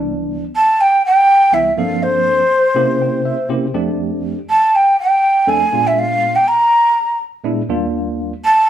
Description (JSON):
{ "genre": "jazz", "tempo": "122 BPM", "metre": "4/4", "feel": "straight", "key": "C major", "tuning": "A4 = 440 Hz", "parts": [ { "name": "tine electric piano", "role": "accompaniment", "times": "0.0-8.3 s", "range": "C2 to G5", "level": "-19 LUFS", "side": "right 1 dB", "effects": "medium stereo tremolo" }, { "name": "breathy mellow jazz flute", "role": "melody", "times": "0.6-8.7 s", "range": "C5 to Bb5", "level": "-11 LUFS", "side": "right 1 dB", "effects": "none" } ], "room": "wet studio reverb, RT60 0.7 s", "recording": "band playing live in one room", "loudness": "-12 LUFS", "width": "side -10 dB against mid", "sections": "0.0-8.7 A section", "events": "tine electric piano fill 2.8-3.8", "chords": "0.0 Cmaj9; 1.8 Gm11; 2.8 C7b9; 3.8 F69; 5.7 Bb7b9; 7.7 Ebmaj9" }